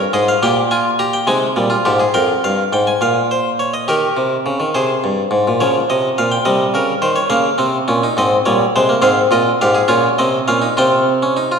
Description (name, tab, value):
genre	classical, baroque-style 4-part fugue for harpsichord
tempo	69 BPM (dotted quarters)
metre	6/8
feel	straight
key	unclear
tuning	A4 = 440 Hz
part	harpsichord	solo	0.0-11.6 s	F2 to Bb5	-13 LUFS	equal	none
room	wet scoring stage reverb, RT60 1.8 s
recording	none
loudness	-13 LUFS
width	side -6 dB against mid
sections	0.0-2.1 A section; 2.1-11.6 B section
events	none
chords	0.4 Gm7/Bb; 1.3 Ab; 2.1 Fm; 3.0 Bbm; 3.9 Eb; 4.7 Ab; 5.6 Db; 6.5 Cm; 7.3 Bbm; 8.2 Ab; 9.0 Fm/Ab; 9.9 Bbmadd9; 10.8 Csus4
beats	| 0.41 1.27 | 2.14 3.01 | 3.88 4.75 | 5.60 6.46 | 7.31 8.17 | 9.03 9.90 | 10.79